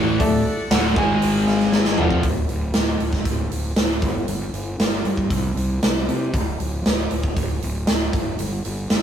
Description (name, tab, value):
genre	classic rock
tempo	117 BPM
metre	4/4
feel	straight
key	unclear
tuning	A4 = 437 Hz
part	warm upright piano	accompaniment	0.0-2.2 s	G#4 to Bb5	-25 LUFS	right 2 dB	none
part	overdriven tonewheel organ	sustained chords	0.0-2.0 s	D#4 to G#5	-34 LUFS	left 1 dB	slow rotary speaker
part	overdriven semi-hollow guitar	riff	0.0-2.2 s	D2 to A3	-25 LUFS	right 3 dB	none
part	sludgy distorted guitar	riff	0.0-2.2 s	D2 to A3	-23 LUFS	left 6 dB	overdrive
part	thick fuzz guitar	riff	0.0-2.2 s	D2 to A3	-26 LUFS	left 1 dB	none
part	fuzz fingered electric bass	bass	0.0-9.0 s	D1 to C3	-25 LUFS	equal	overdrive
part	big rock drum kit	drums	0.2-9.0 s	hi-hat, kick drum, snare drum, toms	-21 LUFS	right 1 dB	none
part	tambourine	percussion	0.7-1.9 s	none	-41 LUFS	left 1 dB	none
room	moderate small room reverb, RT60 0.5 s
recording	rough rehearsal-room recording, warm saturation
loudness	-18 LUFS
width	side -9 dB against mid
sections	0.0-2.2 A section; 2.2-9.0 B section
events	drum fill 1.7-2.2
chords	0.0 D; 1.0 G#5; 2.0 D; 2.2 N.C.